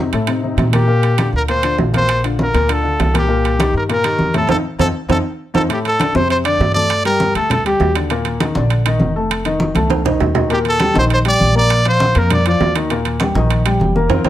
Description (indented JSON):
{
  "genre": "latin, salsa",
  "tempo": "200 BPM",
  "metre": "4/4",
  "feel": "straight",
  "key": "unclear",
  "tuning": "A4 = 440 Hz",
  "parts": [
    { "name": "warm grand piano", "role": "accompaniment", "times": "0.0-14.3 s", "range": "A2 to Bb5", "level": "-19 LUFS", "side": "left 3 dB", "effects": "none" },
    { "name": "upright bass", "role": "bass", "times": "0.0-14.3 s", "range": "F1 to Bb2", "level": "-18 LUFS", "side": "equal", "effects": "none" },
    { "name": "congas", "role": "percussion", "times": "0.1-14.3 s", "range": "none", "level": "-21 LUFS", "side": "equal", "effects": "none" },
    { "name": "timbales", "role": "percussion", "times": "0.1-14.3 s", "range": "none", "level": "-22 LUFS", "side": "right 8 dB", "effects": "none" },
    { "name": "clear trumpet", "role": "melody", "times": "0.8-7.9, 10.5-12.7 s", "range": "G4 to D5", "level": "-17 LUFS", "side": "equal", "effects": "none" }
  ],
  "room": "light reverb",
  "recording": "none",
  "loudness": "-13 LUFS",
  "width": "side -13 dB against mid",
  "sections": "0.0-5.7 A section; 5.7-14.3 B section",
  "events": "band accent 4.5-5.7, 14.1; drum fill 5.3-5.7, 9.8-10.5",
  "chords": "0.0 F7 (rootless); 0.9 Bb69; 2.1 C13sus4; 3.3 Cm7; 4.5 F7(no3); 5.7 Dm7; 6.9 Gmadd9; 8.1 Eb5; 9.3 F7; 10.5 Eb; 11.7 Bb; 12.9 Eb",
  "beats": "0.28 0.58 | 0.89 1.19 1.49 1.79 | 2.09 2.39 2.69 2.99 | 3.29 3.60 3.90 4.20 | 4.50 4.80 5.10 5.40 | 5.70 6.00 6.30 6.60 | 6.90 7.20 7.50 7.80 | 8.10 8.40 8.70 9.01 | 9.30 9.61 9.90 10.21 | 10.51 10.80 11.11 11.40 | 11.70 12.00 12.30 12.60 | 12.90 13.20 13.50 13.80 | 14.10"
}